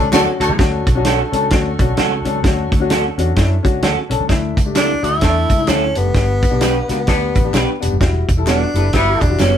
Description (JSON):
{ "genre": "uptempo 1960s-style soul", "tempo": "129 BPM", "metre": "4/4", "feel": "swing 60% on 8ths", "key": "D major", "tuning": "A4 = 440 Hz", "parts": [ { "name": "breathy tenor saxophone", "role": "melody", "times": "0.0-0.4, 4.8-9.6 s", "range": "B3 to E4", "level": "-20 LUFS", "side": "equal", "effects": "none" }, { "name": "dark horn section", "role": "second line", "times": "0.0-9.3 s", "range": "A3 to B4", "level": "-23 LUFS", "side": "right 1 dB", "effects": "none" }, { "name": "warm grand piano", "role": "accompaniment", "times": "0.0-9.5 s", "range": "G3 to A4", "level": "-21 LUFS", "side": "left 6 dB", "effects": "none" }, { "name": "vintage muted fingered electric bass", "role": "bass", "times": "0.0-9.6 s", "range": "E1 to F#2", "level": "-19 LUFS", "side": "equal", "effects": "none" }, { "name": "electric guitar through a small old amp", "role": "stabs", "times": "0.1-9.5 s", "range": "G3 to B4", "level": "-20 LUFS", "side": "right 5 dB", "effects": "vibrato effect" }, { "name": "warm soul drum kit", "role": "drums", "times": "0.1-9.5 s", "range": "hi-hat, kick drum, snare drum", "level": "-17 LUFS", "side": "equal", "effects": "none" }, { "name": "congas", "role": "percussion", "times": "0.1-9.5 s", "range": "none", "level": "-32 LUFS", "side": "right 4 dB", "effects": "none" }, { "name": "handclaps and tambourine", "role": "percussion", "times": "0.1-0.5, 4.3-9.5 s", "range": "none", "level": "-32 LUFS", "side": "right 1 dB", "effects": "none" } ], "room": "moderate studio reverb, RT60 0.5 s", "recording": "band playing live in one room", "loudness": "-13 LUFS", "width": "side -9 dB against mid", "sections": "0.6-4.3 A section; 4.3-9.6 B section", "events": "band accent 0.0-0.6", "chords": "0.0 Dmaj7; 4.3 Dsus2; 6.1 G; 8.0 Emadd9", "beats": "0.12 | 0.59 1.05 1.51 1.98 | 2.44 2.90 3.36 3.83 | 4.29 4.75 5.22 5.68 | 6.15 6.61 7.08 7.54 | 8.01 8.47 8.94 9.40" }